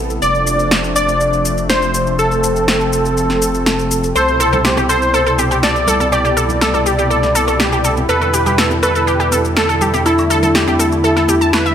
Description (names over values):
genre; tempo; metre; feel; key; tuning
progressive house; 122 BPM; 4/4; straight; unclear; A4 = 440 Hz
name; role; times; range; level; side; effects
plucky unison lead; melody; 0.0-11.7 s; E4 to D5; -16 LUFS; equal; tape echo
warm analog pad; sustained chords; 0.0-11.7 s; B2 to E4; -20 LUFS; left 1 dB; lush chorus
round analog bass; bass; 0.0-11.7 s; F1 to E2; -22 LUFS; equal; tube saturation
electronic shaker and snare drum; drums; 0.1-11.7 s; none; -20 LUFS; left 1 dB; overdrive, studio reverb
wide unison pluck; arpeggios; 4.2-11.7 s; G4 to A5; -17 LUFS; equal; tape echo
woodblock and congas; percussion; 4.2-11.6 s; none; -26 LUFS; right 2 dB; none
room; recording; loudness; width
moderate lush hall reverb, RT60 2.1 s; none; -12 LUFS; side -9 dB against mid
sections
0.0-11.7 A section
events
none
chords
0.2 F6; 4.2 Cmaj7; 8.1 Em7